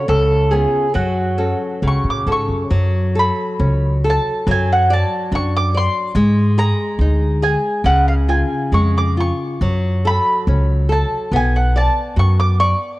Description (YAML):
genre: fado-style ballad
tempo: 70 BPM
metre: 2/4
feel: rubato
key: F# harmonic minor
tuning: A4 = 439 Hz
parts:
  - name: mandolin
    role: melody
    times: 0.0-13.0 s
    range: F#4 to D6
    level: -20 LUFS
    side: right 1 dB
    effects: cassette tape
  - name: nylon-string guitar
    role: accompaniment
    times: 0.0-13.0 s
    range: C#3 to D5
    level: -21 LUFS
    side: left 1 dB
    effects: cassette tape
  - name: upright bass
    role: bass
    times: 0.1-12.7 s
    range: B1 to A2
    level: -16 LUFS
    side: equal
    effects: none
room: light reverb, small room ambience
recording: home recording on cassette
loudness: -14 LUFS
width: side -18 dB against mid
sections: 0.0-2.7 A section; 2.7-13.0 B section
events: none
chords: 0.1 C#7; 0.9 F#m; 4.5 D7/F#; 6.2 G#5; 7.8 C#; 9.6 F#m; 11.3 Bm